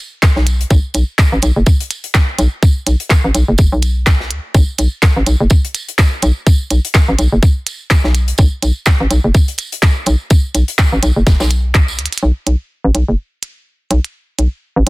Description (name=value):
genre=minimal techno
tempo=125 BPM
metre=4/4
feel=swing 58% on 16ths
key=B minor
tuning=A4 = 440 Hz
part: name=electronic kick drum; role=drums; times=0.2-11.9 s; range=none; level=-10 LUFS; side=equal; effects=none
part: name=minimal click drum kit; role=drums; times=0.2-14.9 s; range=handclaps, hi-hat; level=-18 LUFS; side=right 1 dB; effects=none
part: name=modern studio drum kit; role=drums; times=0.2-12.2 s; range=hi-hat, snare drum, tambourine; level=-26 LUFS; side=equal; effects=high-pass filter on hats, high-pass filter on snare, high-pass filter on perc, high-pass filter on room
part: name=hollow knocking FM bass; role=bass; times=0.4-14.9 s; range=F#1 to D2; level=-13 LUFS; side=equal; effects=sidechain pumping
room=small room ambience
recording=dense, heavily limited modern master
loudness=-11 LUFS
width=side -21 dB against mid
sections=0.0-12.2 A section; 12.2-14.9 B section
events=drum fill 12.0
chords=none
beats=0.23 | 0.71 1.19 1.67 2.15 | 2.63 3.11 3.59 4.07 | 4.55 5.03 5.51 5.99 | 6.47 6.95 7.43 7.91 | 8.39 8.87 9.35 9.83 | 10.31 10.79 11.27 11.75 | 12.23 12.71 13.19 13.67 | 14.15 14.63